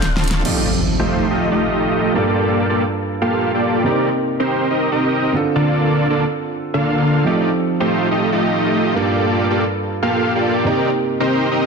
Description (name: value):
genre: future bass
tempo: 141 BPM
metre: 4/4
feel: swing 55% on 16ths, half-time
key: unclear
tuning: A4 = 442 Hz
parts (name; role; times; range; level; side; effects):
- dense compressed supersaw; riff; 0.0-11.7 s; D3 to F5; -17 LUFS; equal; cassette tape, low-pass filter, ping-pong delay
- pop drum kit; drums; 0.0-0.5 s; crash cymbal, hi-hat, snare drum; -23 LUFS; equal; studio ambience
- warm grand piano; accompaniment; 0.4-11.7 s; G2 to A4; -21 LUFS; right 2 dB; vintage 12-bit sampler grit, ping-pong delay
- impact; sound effects; 0.4-2.2 s; none; -23 LUFS; left 1 dB; none
room: moderate digital room reverb, RT60 1.1 s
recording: dense, heavily limited modern master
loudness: -15 LUFS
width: side -5 dB against mid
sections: 0.5-11.7 A section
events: drum fill 0.0-0.5; impact 0.5-2.2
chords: 0.5 F13; 2.2 Gm9; 3.9 Cm9; 5.3 Bbmaj7/D; 7.3 F13; 9.0 Gm9; 10.7 Cm9